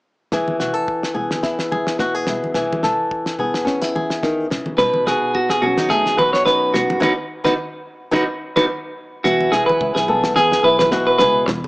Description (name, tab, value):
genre	highlife guitar band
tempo	108 BPM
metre	4/4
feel	swing 55% on 16ths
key	E major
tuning	A4 = 441 Hz
part	flamenco guitar	accompaniment	0.3-11.7 s	F#2 to A4	-20 LUFS	left 1 dB	none
part	cloth-damped thuddy drum kit	drums	0.3-11.6 s	kick drum, snare drum	-26 LUFS	equal	none
part	congas	percussion	0.3-11.7 s	none	-30 LUFS	equal	none
part	clean electric guitar	arpeggios	4.8-11.5 s	D#4 to C#5	-16 LUFS	right 1 dB	slapback echo
part	fingered electric bass	bass	9.3-11.7 s	B1 to E2	-28 LUFS	equal	none
room	moderate spring reverb, RT60 2.3 s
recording	small speaker sound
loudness	-16 LUFS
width	side -23 dB against mid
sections	0.3-9.3 A section; 9.3-11.7 B section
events	band accent 7.0-9.3; drum fill 8.7-9.3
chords	0.3 E; 4.8 B; 9.3 E